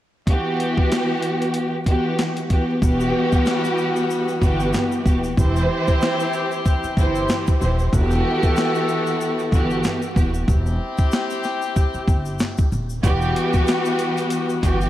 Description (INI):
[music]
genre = hip hop, boom-bap hip-hop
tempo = 94 BPM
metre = 4/4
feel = swing 56% on 16ths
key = E minor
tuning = A4 = 438 Hz
[part]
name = dark studio string section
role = accompaniment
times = 0.3-14.9 s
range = E3 to C5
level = -21 LUFS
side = right 1 dB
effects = cassette tape, high-pass filter, low-pass filter
[part]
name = boom bap sampler-style drum kit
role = drums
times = 0.3-14.8 s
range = handclaps, hi-hat, kick drum, snare drum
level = -20 LUFS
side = equal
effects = none
[part]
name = clear saxophone section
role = stabs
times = 2.8-14.9 s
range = G3 to A4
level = -26 LUFS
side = left 3 dB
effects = high-pass filter, low-pass filter, tape echo
[part]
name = upright bass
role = bass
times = 2.8-14.9 s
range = D#1 to G1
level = -23 LUFS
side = equal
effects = none
[part]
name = tube shaker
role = percussion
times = 2.8-14.9 s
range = none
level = -42 LUFS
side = left 6 dB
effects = none
[sound]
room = moderate plate reverb, RT60 2.6 s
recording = dreamy mix soaked in reverb, vinyl crackle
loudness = -18 LUFS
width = side -13 dB against mid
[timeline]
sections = 0.3-2.8 A section; 2.8-14.9 B section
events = hi-hats muted 2.8-13.0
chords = 0.3 Emadd9; 5.4 C/E; 7.9 Emadd9; 10.5 C/E; 13.0 Emadd9